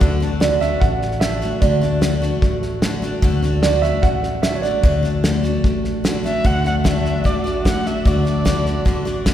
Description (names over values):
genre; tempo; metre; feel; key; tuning
honky-tonk and classic country; 149 BPM; 4/4; straight; D major; A4 = 439 Hz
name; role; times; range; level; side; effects
picked steel-string acoustic guitar; accompaniment; 0.0-9.3 s; D3 to F#4; -23 LUFS; left 2 dB; none
upright bass; bass; 0.0-9.3 s; A1 to D2; -22 LUFS; left 1 dB; none
cloth-damped thuddy drum kit; drums; 0.0-9.3 s; hi-hat, kick drum, snare drum; -20 LUFS; equal; none
warm upright piano; second line; 0.4-6.0 s; C#5 to F#5; -23 LUFS; right 5 dB; none
dark erhu; melody; 6.3-9.3 s; D5 to F#5; -25 LUFS; equal; none
room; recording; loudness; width
wet church reverb, RT60 3.5 s; recorded in a church or concert hall; -16 LUFS; side -11 dB against mid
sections
0.0-6.4 A section; 6.4-9.3 B section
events
upright piano solo 0.0-6.4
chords
0.0 D